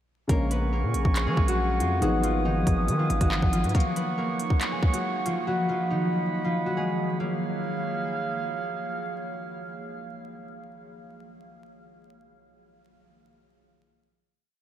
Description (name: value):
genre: hip hop, drill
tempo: 139 BPM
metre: 4/4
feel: half-time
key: Bb phrygian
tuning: A4 = 438 Hz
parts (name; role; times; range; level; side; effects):
- concert harp; melody; 0.3-10.4 s; Eb3 to Cb5; -29 LUFS; left 1 dB; ping-pong delay
- dark baby grand piano; accompaniment; 0.3-3.8 s; Db3 to Eb4; -34 LUFS; left 2 dB; none
- warm woodwind section; sustained chords; 0.3-10.4 s; Bb3 to Eb6; -33 LUFS; right 3 dB; none
- distorted 808-style bass; bass; 0.3-3.7 s; Ab1 to F3; -26 LUFS; equal; distortion
- drill drum kit; drums; 0.3-5.4 s; handclaps, hi-hat, kick drum; -27 LUFS; equal; none
room: moderate huge ambient reverb, RT60 8.2 s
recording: dreamy mix soaked in reverb, vinyl crackle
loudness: -24 LUFS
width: side -11 dB against mid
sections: 0.3-7.2 verse; 7.2-10.7 final chord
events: break 3.7-7.2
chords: 0.3 Bbm7; 2.0 Abm; 3.7 Gb; 5.5 Bmaj7; 7.2 Bbm7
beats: | 0.29 0.72 1.16 1.59 | 2.02 2.45 2.88 3.31 | 3.75 4.18 4.61 5.04 | 5.47 5.91 6.34 6.77 | 7.20 7.63 8.06 8.49 | 8.93 9.36 9.79 10.22